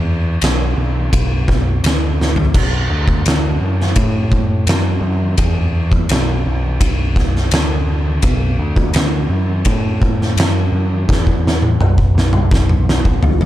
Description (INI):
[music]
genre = stoner and doom metal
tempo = 84 BPM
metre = 4/4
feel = straight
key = B minor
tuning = A4 = 440 Hz
[part]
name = growling picked electric bass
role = bass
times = 0.0-13.5 s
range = B1 to A2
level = -17 LUFS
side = equal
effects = overdrive, tube saturation
[part]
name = oversized low-tuned drum kit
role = drums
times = 0.4-13.5 s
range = crash cymbal, kick drum, ride cymbal, snare drum, toms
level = -15 LUFS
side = equal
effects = none
[sound]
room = little or no reverb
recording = dark, warm production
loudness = -13 LUFS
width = side -14 dB against mid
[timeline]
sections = 0.0-13.5 A section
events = drum fill 2.2-2.5, 11.1-13.5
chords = none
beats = 0.41 1.12 1.83 | 2.54 3.25 3.96 4.67 | 5.38 6.09 6.81 7.52 | 8.23 8.94 9.66 10.37 | 11.08 11.80 12.51 13.23